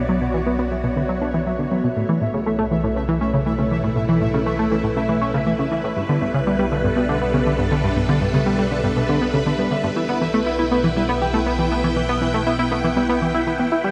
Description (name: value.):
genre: ambient, sequencer-driven space music.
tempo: 120 BPM.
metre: 4/4.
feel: straight.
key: unclear.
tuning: A4 = 440 Hz.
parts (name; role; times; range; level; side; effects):
string machine, full ensemble; sustained chords; 0.0-13.9 s; G3 to G5; -26 LUFS; equal; phaser, ensemble chorus.
tight sequenced synth; riff; 0.0-13.9 s; G2 to G4; -24 LUFS; equal; chorus, delay.
fat analog bass; bass; 0.0-13.9 s; B1; -30 LUFS; equal; none.
pulsing gated texture; texture; 0.0-13.9 s; E5; -34 LUFS; equal; chorus, built-in reverb.
thumb-piano-like synth pluck; arpeggios; 0.1-13.8 s; A3 to G5; -28 LUFS; equal; chorus, delay.
room: wet huge ambient reverb, RT60 7.6 s.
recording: none.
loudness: -20 LUFS.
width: mono.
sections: 0.0-13.9 A section.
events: filter sweep on synth arpeggio sound 0.0-13.9.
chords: 0.0 Bm; 2.0 A/B; 6.0 G/B; 10.0 Em/B.